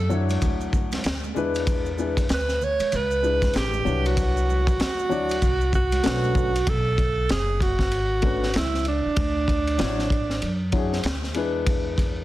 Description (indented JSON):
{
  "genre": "hip hop, jazz-hop",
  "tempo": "96 BPM",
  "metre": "4/4",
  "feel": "swing 60% on 16ths",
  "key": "B dorian",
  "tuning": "A4 = 439 Hz",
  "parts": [
    { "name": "breathy alto saxophone", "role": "melody", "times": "0.0-10.7 s", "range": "D4 to C#5", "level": "-25 LUFS", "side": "right 3 dB", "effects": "none" },
    { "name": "upright bass", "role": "bass", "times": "0.0-12.2 s", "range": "F#1 to F#2", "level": "-27 LUFS", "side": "equal", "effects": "none" },
    { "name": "dark baby grand piano", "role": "accompaniment", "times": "0.1-12.2 s", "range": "F#3 to D5", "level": "-27 LUFS", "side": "left 4 dB", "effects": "none" },
    { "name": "congas and maracas", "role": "percussion", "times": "0.1-6.7 s", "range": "none", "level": "-38 LUFS", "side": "right 6 dB", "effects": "none" },
    { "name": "crunchy breakbeat drum kit", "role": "drums", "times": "0.3-12.2 s", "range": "hi-hat, kick drum, ride cymbal, snare drum", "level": "-26 LUFS", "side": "equal", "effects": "none" }
  ],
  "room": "light reverb, small room ambience",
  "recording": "dense, heavily limited modern master",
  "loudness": "-21 LUFS",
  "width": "side -15 dB against mid",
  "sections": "0.0-6.7 A section; 6.7-12.2 B section",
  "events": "none",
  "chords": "0.0 Dmaj9; 1.4 E7; 3.9 Cmaj9#11; 6.0 Bm9; 6.7 B7sus2; 9.2 Dadd9; 11.4 E7",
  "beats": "0.42 1.04 | 1.67 2.29 2.92 3.54 | 4.17 4.79 5.42 6.04 | 6.67 7.29 7.92 8.54 | 9.17 9.79 10.42 11.04 | 11.67"
}